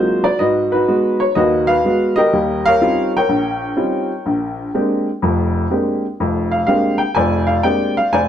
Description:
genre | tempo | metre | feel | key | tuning
solo jazz | 124 BPM | 4/4 | swing 68% on 8ths | unclear | A4 = 436 Hz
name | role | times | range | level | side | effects
warm upright piano | solo | 0.0-8.3 s | F1 to Ab5 | -14 LUFS | equal | none
room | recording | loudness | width
moderate club reverb, RT60 0.9 s | dark, warm production | -14 LUFS | side -10 dB against mid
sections
0.0-8.3 A section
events
none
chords
0.4 Abm7; 2.3 Eb13; 4.3 Bb13

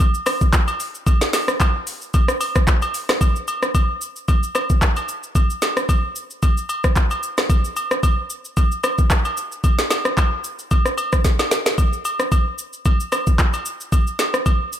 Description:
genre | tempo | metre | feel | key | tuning
amapiano | 112 BPM | 4/4 | swing 55% on 16ths | none | none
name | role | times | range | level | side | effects
smooth R&B drum kit | drums | 0.0-14.8 s | handclaps, hi-hat, kick drum, rim click, shaker, snare drum | -17 LUFS | equal | none
agogo bells | percussion | 0.3-14.6 s | none | -25 LUFS | equal | none
room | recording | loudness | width
little or no reverb | none | -17 LUFS | side -11 dB against mid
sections
0.0-3.2 A section; 3.2-14.8 B section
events
drop 0.0-3.2; drum fill 11.2-11.8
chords
none

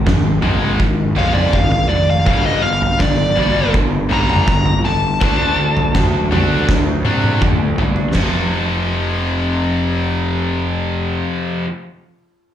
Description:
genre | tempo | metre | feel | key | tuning
quiet-loud alternative rock | 82 BPM | 4/4 | straight | unclear | A4 = 441 Hz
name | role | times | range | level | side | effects
scooped high-gain guitar | riff | 0.0-11.7 s | F2 to D4 | -24 LUFS | right 9 dB | distortion, slapback echo
tight distorted guitar | riff | 0.0-11.7 s | F2 to D4 | -22 LUFS | left 8 dB | distortion, slapback echo
fuzz picked electric bass | bass | 0.0-11.2 s | F1 to C3 | -20 LUFS | equal | overdrive
oversized low-tuned drum kit | drums | 0.1-8.3 s | crash cymbal, kick drum, snare drum, toms | -17 LUFS | right 1 dB | none
dark smooth lead guitar | melody | 1.2-6.3 s | D5 to Bb5 | -18 LUFS | left 1 dB | overdrive, slapback echo
room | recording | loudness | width
light reverb | live gig heard through the venue's PA, club reverb | -14 LUFS | side -10 dB against mid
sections
0.0-8.2 A section; 8.2-11.1 B section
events
lead electric guitar solo 0.0-8.2; drum fill 6.7-8.2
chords
0.0 Ab5; 2.3 G5; 5.2 D5; 8.2 F5

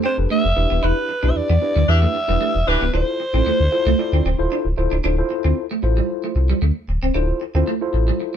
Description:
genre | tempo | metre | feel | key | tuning
funk | 114 BPM | 4/4 | straight | D dorian | A4 = 441 Hz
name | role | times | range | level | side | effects
mellow tine electric piano | accompaniment | 0.0-8.4 s | D4 to D5 | -24 LUFS | left 2 dB | medium stereo tremolo
clean electric guitar | riff | 0.0-8.4 s | G3 to E4 | -24 LUFS | right 4 dB | lush chorus
breathy alto saxophone | melody | 0.1-4.7 s | B4 to E5 | -22 LUFS | equal | slapback echo
sub bass with octave | bass | 0.2-8.1 s | C#1 to E2 | -18 LUFS | equal | none
bright horn section | second line | 1.9-2.8 s | E3 to G4 | -23 LUFS | equal | none
room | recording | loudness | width
light reverb | dark, warm production | -17 LUFS | side -9 dB against mid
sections
0.0-5.0 A section; 5.0-8.4 B section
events
none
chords
0.0 F6; 0.6 Em7; 2.9 Dm9

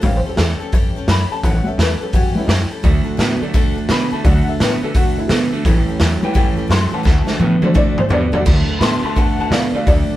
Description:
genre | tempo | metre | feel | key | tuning
rockabilly | 171 BPM | 4/4 | swing 64% on 8ths | D major | A4 = 439 Hz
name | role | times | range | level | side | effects
honky-tonk upright piano | accompaniment | 0.0-10.2 s | F#3 to C6 | -22 LUFS | left 2 dB | none
picked steel-string acoustic guitar | accompaniment | 0.0-10.2 s | A2 to A4 | -27 LUFS | left 4 dB | none
upright bass | bass | 0.0-10.1 s | A1 to D3 | -20 LUFS | equal | none
raw garage drum kit | drums | 0.0-10.0 s | crash cymbal, hi-hat, kick drum, snare drum, toms | -17 LUFS | equal | none
electric guitar at the edge of break-up | riff | 2.8-10.2 s | A2 to B3 | -21 LUFS | right 3 dB | none
room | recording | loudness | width
light reverb | band playing live in one room | -14 LUFS | side -14 dB against mid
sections
0.0-8.5 A section; 8.5-10.2 A section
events
honky-tonk piano solo 0.0-10.2; drum fill 7.1-8.5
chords
0.0 A7; 2.8 D; 5.7 A7; 7.1 D

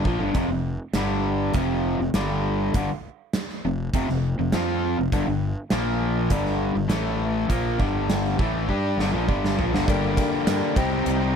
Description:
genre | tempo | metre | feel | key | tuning
classic rock | 101 BPM | 4/4 | straight | G minor | A4 = 440 Hz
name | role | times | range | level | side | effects
crunchy overdriven guitar | riff | 0.0-11.4 s | F2 to G4 | -26 LUFS | left 11 dB | none
raw garage guitar | riff | 0.0-11.4 s | F2 to G4 | -28 LUFS | right 14 dB | overdrive, spring reverb
fuzz fingered electric bass | bass | 0.0-11.4 s | F1 to G2 | -28 LUFS | right 1 dB | overdrive
gated 80s drum kit | drums | 0.1-11.2 s | hi-hat, kick drum, ride cymbal, snare drum, toms | -27 LUFS | right 1 dB | none
reed electric piano | accompaniment | 9.9-11.3 s | G4 to G5 | -30 LUFS | left 7 dB | none
tonewheel organ | sustained chords | 9.9-11.4 s | Bb3 to G5 | -34 LUFS | right 1 dB | none
tambourine | percussion | 10.5-10.6 s | none | -42 LUFS | right 21 dB | none
room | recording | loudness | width
little or no reverb | none | -21 LUFS | side -7 dB against mid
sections
0.0-9.9 A section; 9.9-11.4 B section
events
drum fill 8.7-9.9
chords
0.4 F5; 1.0 G5; 1.5 F5; 2.1 G5; 2.7 F5; 5.1 G5; 5.7 Bb5; 6.3 G5; 6.9 A5; 7.5 Gm; 9.9 Gmadd9; 10.8 Cm

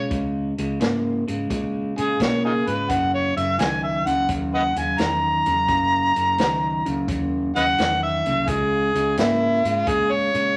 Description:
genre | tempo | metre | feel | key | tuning
electric blues shuffle | 86 BPM | 4/4 | swing 68% on 8ths | unclear | A4 = 444 Hz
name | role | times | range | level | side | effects
mellow harmonica | melody | 0.0-10.6 s | Eb4 to Bb5 | -23 LUFS | equal | overdrive
electric guitar through a small old amp | riff | 0.0-10.5 s | Gb2 to Bb3 | -27 LUFS | equal | none
vintage muted fingered electric bass | bass | 0.0-10.5 s | Gb1 to Cb3 | -34 LUFS | equal | none
vintage drum kit | drums | 0.1-10.4 s | hi-hat, kick drum, snare drum | -31 LUFS | equal | none
room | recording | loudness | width
moderate large studio reverb, RT60 0.9 s | none | -22 LUFS | mono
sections
0.0-10.6 A section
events
harmonica solo 0.0-10.6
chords
0.0 Db7(no3); 2.9 Gb7; 8.5 Db5

